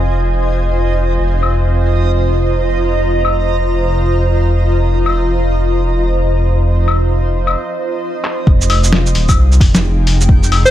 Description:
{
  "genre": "future garage",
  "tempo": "132 BPM",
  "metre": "4/4",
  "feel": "swing 61% on 16ths",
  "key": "F minor",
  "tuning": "A4 = 436 Hz",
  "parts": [
    { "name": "granular cloud pad", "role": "sustained chords", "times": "0.0-10.7 s", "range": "Eb4 to Bb5", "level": "-18 LUFS", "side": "right 1 dB", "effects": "built-in reverb, sidechain pumping" },
    { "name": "dark detuned saw bass", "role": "bass", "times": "0.0-10.7 s", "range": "Eb1 to C2", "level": "-14 LUFS", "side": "equal", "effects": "sidechain pumping" },
    { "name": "backwards swelling texture", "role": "texture", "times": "0.0-10.7 s", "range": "Eb5 to G5", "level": "-26 LUFS", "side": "right 6 dB", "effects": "built-in reverb" },
    { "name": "lo-fi sampler-style drum kit", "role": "drums", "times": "1.4-10.7 s", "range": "claves, handclaps, hi-hat, shaker, snare drum", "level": "-17 LUFS", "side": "left 2 dB", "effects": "overdrive, low-pass filter on cymbals, small room ambience, low-pass filter on perc, low-pass filter on snare, low-pass filter on hats" },
    { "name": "electronic kick drum", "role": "drums", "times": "8.5-10.4 s", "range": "none", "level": "-11 LUFS", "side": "equal", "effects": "small room ambience" },
    { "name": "bright alto saxophone", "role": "melody", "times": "10.7 s", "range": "C5", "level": "-6 LUFS", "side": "equal", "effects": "none" }
  ],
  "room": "light reverb",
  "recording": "none",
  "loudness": "-11 LUFS",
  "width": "side -12 dB against mid",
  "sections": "0.0-8.5 A section; 8.5-10.7 B section",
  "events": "break 7.6-8.5; drum fill 8.2",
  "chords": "0.0 Fm7"
}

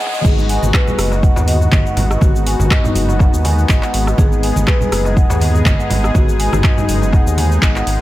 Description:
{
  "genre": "afro house",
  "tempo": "122 BPM",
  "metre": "4/4",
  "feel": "swing 55% on 16ths",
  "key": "G# minor pentatonic",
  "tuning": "A4 = 440 Hz",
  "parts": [
    { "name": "warm analog pad", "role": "sustained chords", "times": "0.0-8.0 s", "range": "D#3 to G#4", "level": "-22 LUFS", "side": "left 2 dB", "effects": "chorus, tremolo, sidechain pumping" },
    { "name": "deep house drum kit", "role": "drums", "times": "0.0-8.0 s", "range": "cabasa, crash cymbal, handclaps, hi-hat, rim click, toms", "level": "-22 LUFS", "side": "equal", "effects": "none" },
    { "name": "marimba with medium mallets", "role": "arpeggios", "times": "0.1-7.8 s", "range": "D#4 to G#5", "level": "-22 LUFS", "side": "left 1 dB", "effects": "sidechain pumping, analog delay" },
    { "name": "round analog bass", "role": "bass", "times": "0.2-8.0 s", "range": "F#1 to D#2", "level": "-17 LUFS", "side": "equal", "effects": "sidechain pumping" },
    { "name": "electronic kick drum", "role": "drums", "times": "0.2-7.7 s", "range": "none", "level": "-13 LUFS", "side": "equal", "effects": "none" },
    { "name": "congas", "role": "percussion", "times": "0.3-7.5 s", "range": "none", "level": "-23 LUFS", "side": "right 2 dB", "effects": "none" },
    { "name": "darbuka", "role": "percussion", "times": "0.3-7.8 s", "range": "none", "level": "-24 LUFS", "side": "left 1 dB", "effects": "none" }
  ],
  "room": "light reverb",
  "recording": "high-pass filter",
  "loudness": "-12 LUFS",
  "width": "side -15 dB against mid",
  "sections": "0.2-8.0 A section",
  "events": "drum fill 0.0; drop 0.2-8.0",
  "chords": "0.2 G#m7"
}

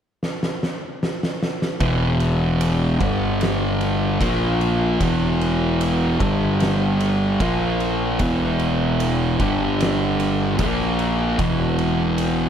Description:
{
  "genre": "stoner and doom metal",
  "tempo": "75 BPM",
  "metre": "4/4",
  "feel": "straight",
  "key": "E minor",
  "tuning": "A4 = 440 Hz",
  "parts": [
    { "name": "oversized low-tuned drum kit", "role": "drums", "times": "0.2-12.4 s", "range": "kick drum, ride cymbal, snare drum", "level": "-27 LUFS", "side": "equal", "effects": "none" },
    { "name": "thick fuzz guitar", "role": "riff", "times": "1.8-12.5 s", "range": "E2 to A#3", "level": "-19 LUFS", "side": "equal", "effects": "distortion" },
    { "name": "fuzz fingered electric bass", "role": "bass", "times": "1.8-12.5 s", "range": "E1 to A#1", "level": "-25 LUFS", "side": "equal", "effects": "overdrive" }
  ],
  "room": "light reverb",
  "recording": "none",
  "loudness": "-18 LUFS",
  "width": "side -8 dB against mid",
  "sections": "0.0-1.8 A section; 1.8-12.5 B section",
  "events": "drum fill 0.2-1.8",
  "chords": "0.0 N.C.; 1.8 E5; 3.0 G5; 4.2 A#5; 5.0 E5; 6.2 G5; 7.4 A#5; 8.2 E5; 9.4 G5; 10.6 A#5; 11.4 E5"
}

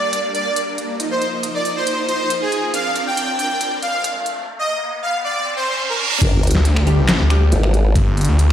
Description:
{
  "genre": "heavy wobble dubstep",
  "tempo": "138 BPM",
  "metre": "4/4",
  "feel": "half-time",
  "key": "G phrygian",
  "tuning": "A4 = 440 Hz",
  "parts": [
    { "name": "soft supersaw", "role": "melody", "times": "0.0-6.1 s", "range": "Ab4 to G5", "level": "-20 LUFS", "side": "equal", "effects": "digital delay" },
    { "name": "supersaw chords", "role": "sustained chords", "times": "0.0-8.5 s", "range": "D3 to Eb5", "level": "-26 LUFS", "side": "right 1 dB", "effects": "phaser, sidechain pumping, low-pass filter" },
    { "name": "riser, reverse cymbal and sub drop", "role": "sound effects", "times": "2.3-8.0 s", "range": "none", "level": "-26 LUFS", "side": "right 1 dB", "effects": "none" },
    { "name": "dubstep drum kit", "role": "drums", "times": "0.1-8.5 s", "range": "crash cymbal, finger snaps, handclaps, hi-hat, snare drum", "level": "-22 LUFS", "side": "equal", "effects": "high-pass filter on hats, studio reverb, high-pass filter on cymbals, high-pass filter on snare" },
    { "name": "formant-sweep wobble bass", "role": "bass", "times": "6.2-7.9 s", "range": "G1 to Ab1", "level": "-15 LUFS", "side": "equal", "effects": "chorus, overdrive" },
    { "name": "electronic kick drum", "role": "drums", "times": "6.2-8.0 s", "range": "none", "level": "-16 LUFS", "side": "equal", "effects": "studio reverb" },
    { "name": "snarling distorted saw bass", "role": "bass", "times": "6.5-8.5 s", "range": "G1 to D2", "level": "-14 LUFS", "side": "equal", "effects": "distortion, overdrive" },
    { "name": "orchestra-hit-like synth stab", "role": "stabs", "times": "6.9-7.5 s", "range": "G3 to G4", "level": "-25 LUFS", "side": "equal", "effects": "built-in reverb, phaser, digital delay" }
  ],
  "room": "moderate digital room reverb, RT60 1.3 s",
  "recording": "played on a big sound system in a bare room, stone room reverb, high-pass filter",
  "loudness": "-16 LUFS",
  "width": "side -10 dB against mid",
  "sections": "0.0-6.2 A section; 6.2-8.5 B section",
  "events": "build-up 0.0-6.2; riser 2.3-6.2; reverse cymbal 5.3-6.2; drop 6.2-8.5; impact 6.2-8.0",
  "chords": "0.0 Gm; 1.0 Ebsus2; 2.7 Bbadd9; 6.2 Gm7"
}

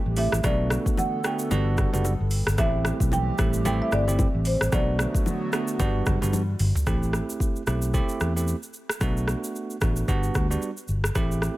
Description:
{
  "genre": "afrobeats",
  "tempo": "112 BPM",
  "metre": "4/4",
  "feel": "swing 58% on 16ths",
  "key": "unclear",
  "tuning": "A4 = 443 Hz",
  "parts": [
    { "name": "marimba with medium mallets", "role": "melody", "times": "0.0-6.3 s", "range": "C5 to G5", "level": "-30 LUFS", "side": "equal", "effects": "tape echo" },
    { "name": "hollow soft pad", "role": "sustained chords", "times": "0.0-6.9 s", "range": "D3 to A4", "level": "-33 LUFS", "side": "equal", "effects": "chorus" },
    { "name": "fingered electric bass", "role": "bass", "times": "0.1-11.5 s", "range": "F#1 to G2", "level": "-25 LUFS", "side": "equal", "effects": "none" },
    { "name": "bell-like tine electric piano", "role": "accompaniment", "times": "0.2-11.6 s", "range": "G3 to G4", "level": "-30 LUFS", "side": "right 4 dB", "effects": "none" },
    { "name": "afro-pop drum kit", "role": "drums", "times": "0.2-11.6 s", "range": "hi-hat, kick drum, rim click, shaker, toms", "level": "-26 LUFS", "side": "equal", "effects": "overdrive" },
    { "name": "congas and bongos", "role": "percussion", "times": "0.4-6.5 s", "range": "none", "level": "-34 LUFS", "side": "left 3 dB", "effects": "none" }
  ],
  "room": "digital ambience",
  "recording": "none",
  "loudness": "-22 LUFS",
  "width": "side -17 dB against mid",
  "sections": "0.0-6.9 A section; 6.9-11.6 B section",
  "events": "drum fill 6.3-6.9",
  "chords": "0.4 Bm7; 1.5 Gmaj7; 2.6 Am7; 4.7 Bm7; 5.8 Gmaj7; 6.9 Am7; 9.0 Bm7; 10.1 Gmaj7"
}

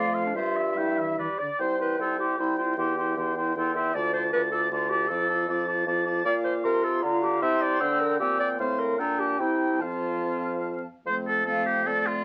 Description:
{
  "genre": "quick classical-period movement for wind quintet",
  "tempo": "152 BPM",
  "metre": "3/4",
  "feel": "rubato",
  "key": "C major, F major from 6.3 s",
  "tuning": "A4 = 435 Hz",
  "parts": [
    { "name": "bright silver concert flute", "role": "melody", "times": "0.0-12.2 s", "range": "D5 to E6", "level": "-34 LUFS", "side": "equal", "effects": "none" },
    { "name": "clear oboe", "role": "second line", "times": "0.0-12.2 s", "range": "F4 to A5", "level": "-32 LUFS", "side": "equal", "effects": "none" },
    { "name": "clear clarinet", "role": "accompaniment", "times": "0.0-12.2 s", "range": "C4 to E5", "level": "-31 LUFS", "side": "equal", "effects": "none" },
    { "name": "dark French horn", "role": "accompaniment", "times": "0.0-12.2 s", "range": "D3 to F4", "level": "-35 LUFS", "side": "equal", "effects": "none" },
    { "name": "warm bassoon", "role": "bass", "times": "0.0-12.2 s", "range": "C2 to D3", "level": "-34 LUFS", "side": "equal", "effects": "none" }
  ],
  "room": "moderate studio ambience, RT60 0.5 s",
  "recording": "very old 78 rpm record, vinyl crackle",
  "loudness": "-26 LUFS",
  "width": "mono",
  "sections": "0.0-1.6 A section; 1.6-11.1 B section; 11.1-12.2 A section",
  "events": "none",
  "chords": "0.4 C/G; 1.2 G; 1.6 C; 2.8 C/E; 3.9 Dm; 5.1 Dm/F; 6.3 Bb; 7.4 C; 8.6 F/A; 9.0 Gm/Bb; 9.4 C; 9.8 F"
}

